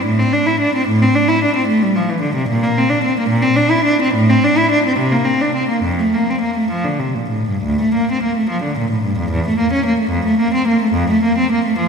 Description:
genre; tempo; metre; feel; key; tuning
classical, baroque-style suite movement for unaccompanied cello; 60-78 BPM (dotted quarters); 6/8; rubato; F major, D minor from 7.7 s; A4 = 440 Hz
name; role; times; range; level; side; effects
warm cello; solo; 0.0-11.9 s; D2 to E4; -14 LUFS; equal; none
room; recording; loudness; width
wet church reverb, RT60 2.9 s; recorded in a church or concert hall; -14 LUFS; side -6 dB against mid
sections
0.0-7.7 A section; 7.7-11.9 A section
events
none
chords
none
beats
0.10 | 0.91 1.71 | 2.50 3.30 | 4.16 4.98 | 5.85 6.73 | 7.67 8.52 | 9.32 10.13 | 10.97 11.78

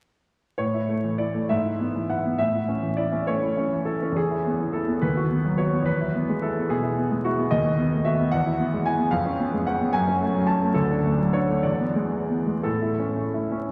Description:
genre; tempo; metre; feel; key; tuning
classical, romantic character piece for solo piano; 56-76 BPM (dotted quarters); 6/8; rubato; A major; A4 = 440 Hz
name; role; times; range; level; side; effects
clear grand piano; solo; 0.6-13.7 s; D2 to A5; -24 LUFS; equal; none
room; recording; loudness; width
wet church reverb, RT60 3.0 s; vinyl crackle; -24 LUFS; mono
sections
0.6-13.7 A section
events
none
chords
0.6 A; 1.5 E/G#; 2.4 A; 4.2 E; 5.0 B/D#; 5.9 E; 7.5 B7/D#; 8.3 E; 9.1 C#7/E#; 9.9 F#m; 10.8 D; 11.6 E7; 12.6 A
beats
| 0.58 1.51 | 2.40 3.27 | 4.16 5.03 | 5.87 6.71 | 7.51 8.32 | 9.12 9.94 | 10.76 11.64 | 12.65 13.70

